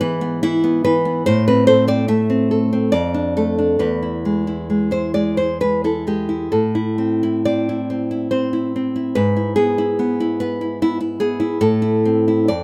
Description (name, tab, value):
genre	romantic piece for solo classical guitar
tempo	62-75 BPM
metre	3/4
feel	rubato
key	A minor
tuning	A4 = 440 Hz
part	nylon-string guitar	solo	0.0-12.6 s	E2 to E5	-18 LUFS	equal	none
room	light reverb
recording	none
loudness	-18 LUFS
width	mono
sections	0.0-12.6 A section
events	none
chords	0.0 E/G#; 1.2 Am; 2.9 Dm/F; 3.8 E; 6.5 Am; 9.2 E/G#; 11.6 Am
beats	0.42 | 1.24 2.07 2.91 | 3.79 4.68 5.60 | 6.52 7.46 8.32 | 9.16 9.99 10.81 | 11.62 12.51